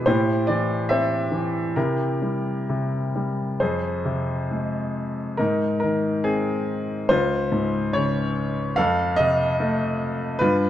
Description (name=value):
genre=classical, lyrical solo piano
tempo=63-74 BPM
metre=4/4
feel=rubato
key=F minor from 3.6 s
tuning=A4 = 444 Hz
part: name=clear grand piano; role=solo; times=0.0-10.7 s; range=Db2 to F5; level=-21 LUFS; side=equal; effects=none
room=moderate concert hall reverb, RT60 2.0 s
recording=dark, warm production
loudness=-21 LUFS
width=side -11 dB against mid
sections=0.0-3.6 A section; 3.6-10.7 B section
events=none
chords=0.1 Am7; 1.8 C7; 3.6 Fm; 5.4 Ab; 7.1 Db; 8.8 F7